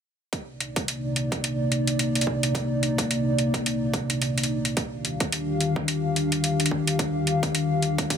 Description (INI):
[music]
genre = glitch hop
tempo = 108 BPM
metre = 4/4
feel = swing 57% on 16ths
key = C minor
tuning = A4 = 439 Hz
[part]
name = dark analog pad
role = sustained chords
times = 0.3-8.2 s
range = C3 to F5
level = -24 LUFS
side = left 1 dB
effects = chorus, vintage 12-bit sampler grit, sidechain pumping
[part]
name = electronic hi-hat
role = drums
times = 0.3-8.2 s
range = none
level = -27 LUFS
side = equal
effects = none
[part]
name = electronic kick drum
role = drums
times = 0.3-8.2 s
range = none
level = -29 LUFS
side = right 2 dB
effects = high-pass filter on kick, high-pass filter on room
[sound]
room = moderate lush hall reverb, RT60 1.9 s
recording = dense, heavily limited modern master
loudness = -23 LUFS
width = side -8 dB against mid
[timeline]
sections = 0.3-8.2 A section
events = none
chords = 0.3 Cm9; 4.8 Ebmaj9